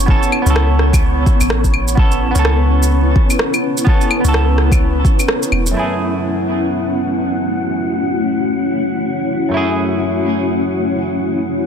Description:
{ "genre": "future garage", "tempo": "127 BPM", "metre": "4/4", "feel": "swing 60% on 16ths", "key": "F# minor", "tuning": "A4 = 440 Hz", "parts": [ { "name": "semi-hollow electric guitar", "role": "accompaniment", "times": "0.0-11.7 s", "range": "F#2 to A4", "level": "-22 LUFS", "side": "right 2 dB", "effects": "analog chorus, sidechain pumping, low-pass filter, digital delay" }, { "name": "granular cloud pad", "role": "sustained chords", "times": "0.0-11.7 s", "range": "A3 to C#5", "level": "-18 LUFS", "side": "left 1 dB", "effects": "built-in reverb, sidechain pumping" }, { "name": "soft 808-style bass", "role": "bass", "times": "0.0-5.7 s", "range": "E1 to C#2", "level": "-15 LUFS", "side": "equal", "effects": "sidechain pumping" }, { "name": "wind-like tuned noise texture", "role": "texture", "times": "0.0-11.7 s", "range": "C#5 to F#5", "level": "-28 LUFS", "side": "left 1 dB", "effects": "built-in reverb" }, { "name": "electronic kick drum", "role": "drums", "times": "0.1-5.2 s", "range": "none", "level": "-13 LUFS", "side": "equal", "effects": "overdrive" }, { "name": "electronic shaker, claves and rim click", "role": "drums", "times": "0.2-5.7 s", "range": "none", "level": "-20 LUFS", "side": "equal", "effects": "overdrive" } ], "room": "little or no reverb", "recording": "dense, heavily limited modern master", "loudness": "-13 LUFS", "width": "side -7 dB against mid", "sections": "0.0-5.8 A section; 5.8-11.7 B section", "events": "break 5.3-5.8; band accent 5.3", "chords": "0.0 Aadd9/F#; 5.8 F#m7" }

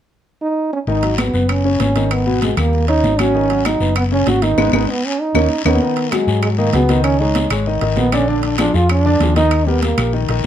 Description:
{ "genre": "latin, salsa", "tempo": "194 BPM", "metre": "4/4", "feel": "straight", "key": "G# minor", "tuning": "A4 = 441 Hz", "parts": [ { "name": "warm trombone", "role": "melody", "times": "0.4-10.1 s", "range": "G#3 to F#4", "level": "-18 LUFS", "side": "right 3 dB", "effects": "none" }, { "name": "clear grand piano", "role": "accompaniment", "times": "0.9-10.5 s", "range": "B2 to D#5", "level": "-20 LUFS", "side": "left 4 dB", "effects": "none" }, { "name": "hollow-body short-scale fingered electric bass", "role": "bass", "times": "0.9-10.4 s", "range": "F#1 to G#2", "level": "-18 LUFS", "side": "equal", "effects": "none" }, { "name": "congas", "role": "percussion", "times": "0.9-10.4 s", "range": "none", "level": "-25 LUFS", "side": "equal", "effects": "none" }, { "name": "guiro", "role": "percussion", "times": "0.9-10.5 s", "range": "none", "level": "-30 LUFS", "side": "left 5 dB", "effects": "none" }, { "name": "timbales", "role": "percussion", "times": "1.0-10.4 s", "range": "none", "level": "-25 LUFS", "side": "right 10 dB", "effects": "none" }, { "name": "claves", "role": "percussion", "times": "1.2-10.1 s", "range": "none", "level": "-27 LUFS", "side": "left 7 dB", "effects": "none" } ], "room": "moderate studio reverb, RT60 0.6 s", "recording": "dark, warm production", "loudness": "-14 LUFS", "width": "side -10 dB against mid", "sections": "0.9-5.8 A section; 5.8-10.5 B section", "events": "drum fill 4.6-5.8; band accent 4.6-5.8", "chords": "0.0 N.C.; 0.9 G#m7; 1.5 F#sus4; 2.1 G#m; 2.7 D#7; 3.3 G#m7; 4.0 F#sus4; 4.6 G#m; 5.2 D#5; 5.8 G#m7; 7.0 C#sus2; 8.3 A#7; 9.5 D#" }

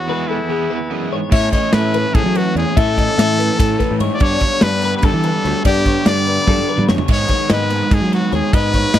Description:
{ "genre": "math rock and midwest emo", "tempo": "291 BPM (eighths)", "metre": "7/8", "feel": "straight", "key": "unclear", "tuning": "A4 = 436 Hz", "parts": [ { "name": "brilliant trumpet", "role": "melody", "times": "0.0-9.0 s", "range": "E4 to D5", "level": "-20 LUFS", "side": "left 1 dB", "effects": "slapback echo" }, { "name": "twangy electric guitar", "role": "accompaniment", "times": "0.0-2.8 s", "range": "E2 to B3", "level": "-27 LUFS", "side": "right 7 dB", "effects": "tremolo" }, { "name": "twelve-string electric guitar", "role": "arpeggios", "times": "0.0-9.0 s", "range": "G#4 to E5", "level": "-23 LUFS", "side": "left 9 dB", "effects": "none" }, { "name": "cranked stack guitar", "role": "riff", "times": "0.1-9.0 s", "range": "G2 to E4", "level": "-21 LUFS", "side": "right 2 dB", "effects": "overdrive" }, { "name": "fuzz fingered electric bass", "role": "bass", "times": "1.3-9.0 s", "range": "D2 to G3", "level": "-20 LUFS", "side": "equal", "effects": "overdrive" }, { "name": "modern studio drum kit", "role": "drums", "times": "1.3-9.0 s", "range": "crash cymbal, kick drum, ride cymbal, snare drum, toms", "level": "-17 LUFS", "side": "equal", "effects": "none" } ], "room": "little or no reverb", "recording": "dry, close 1970s-style studio recording", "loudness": "-13 LUFS", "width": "side -11 dB against mid", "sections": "0.0-1.3 A section; 1.3-9.0 B section", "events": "break 0.0-1.3; drum fill 6.5-7.1", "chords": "0.0 E; 1.3 Aadd9; 4.2 G; 7.1 G#m" }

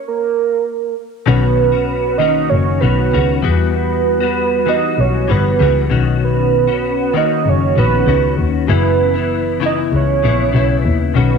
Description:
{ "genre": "indie pop, bedroom pop", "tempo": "97 BPM", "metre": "4/4", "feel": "straight", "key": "B major", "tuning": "A4 = 440 Hz", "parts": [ { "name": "soft octave-layered synth lead", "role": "melody", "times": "0.1-11.4 s", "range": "A#4 to D#5", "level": "-17 LUFS", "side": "right 10 dB", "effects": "analog chorus, slapback echo" }, { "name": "direct-recorded clean electric guitar", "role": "accompaniment", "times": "1.3-11.4 s", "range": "F#2 to F#4", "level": "-18 LUFS", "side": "left 11 dB", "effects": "ensemble chorus, warbly pitch drift" }, { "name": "dark double bass", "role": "bass", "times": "1.3-11.4 s", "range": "F#1 to E2", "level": "-17 LUFS", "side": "left 1 dB", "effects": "none" } ], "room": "moderate echo chamber reverb, RT60 1.7 s, small room ambience", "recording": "1960s-style stereo with parts hard left and right", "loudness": "-13 LUFS", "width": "side -6 dB against mid", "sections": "0.0-1.3 A section; 1.3-11.4 B section", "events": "stop 0.0-1.3", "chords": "0.0 N.C.; 1.3 Bmaj9; 3.4 Emadd9; 5.9 Bmaj9; 8.7 F#7sus4" }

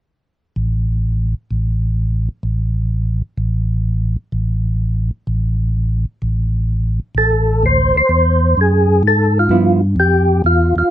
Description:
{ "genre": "soul jazz organ trio", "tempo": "128 BPM", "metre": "4/4", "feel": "swing 68% on 8ths", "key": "unclear", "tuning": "A4 = 440 Hz", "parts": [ { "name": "tonewheel organ", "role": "bass", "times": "0.6-10.8 s", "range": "A1 to G#2", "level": "-15 LUFS", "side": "equal", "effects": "overdrive, chorus vibrato" }, { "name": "percussive tonewheel organ", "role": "melody", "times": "7.2-10.9 s", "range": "F4 to C5", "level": "-14 LUFS", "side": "equal", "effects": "slow rotary speaker, chorus vibrato" }, { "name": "hollow-body jazz guitar", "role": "accompaniment", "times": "9.5-9.8 s", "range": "F3 to E4", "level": "-16 LUFS", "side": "right 6 dB", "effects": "none" } ], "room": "little or no reverb", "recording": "close, detailed microphones", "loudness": "-14 LUFS", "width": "side -12 dB against mid", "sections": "0.1-7.6 A section; 7.6-10.9 B section", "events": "none", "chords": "0.1 N.C.; 7.6 D9; 9.5 G6" }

